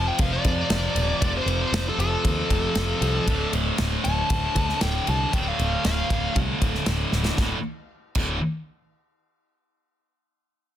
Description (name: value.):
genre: heavy metal.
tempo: 117 BPM.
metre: 4/4.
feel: straight.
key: D minor.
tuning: A4 = 436 Hz.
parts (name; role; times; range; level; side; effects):
high-gain lead guitar; melody; 0.0-6.4 s; A4 to A5; -28 LUFS; left 1 dB; distortion, digital delay.
heavy high-gain guitar; riff; 0.0-8.4 s; D2 to F3; -26 LUFS; equal; distortion.
picked electric bass; bass; 0.0-8.4 s; D1 to F2; -27 LUFS; equal; none.
modern studio drum kit; drums; 0.2-8.3 s; crash cymbal, kick drum, ride cymbal, snare drum; -27 LUFS; equal; none.
room: little or no reverb.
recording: dense, heavily limited modern master.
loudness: -21 LUFS.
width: side -11 dB against mid.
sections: 0.0-7.4 A section; 7.4-9.4 B section.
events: lead electric guitar solo 0.0-7.4; drum fill 7.1.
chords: 0.0 F; 3.3 Dm; 7.4 D5.